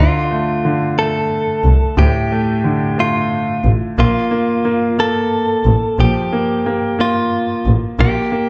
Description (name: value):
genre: six-eight pop ballad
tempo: 60 BPM (dotted quarters)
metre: 6/8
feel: straight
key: unclear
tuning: A4 = 441 Hz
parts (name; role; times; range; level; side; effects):
- direct-recorded clean electric guitar; melody; 0.0-8.5 s; F4 to A4; -21 LUFS; equal; spring reverb
- bright baby grand piano; accompaniment; 0.0-8.5 s; A2 to Bb3; -20 LUFS; equal; none
- clear double bass; bass; 0.0-8.1 s; A1 to D2; -17 LUFS; equal; none
room: moderate echo chamber reverb, RT60 1.2 s, small room ambience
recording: nothing above 8.0 kHz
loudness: -16 LUFS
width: mono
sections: 0.0-8.5 A section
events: none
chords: 0.0 Dm; 4.0 Bb5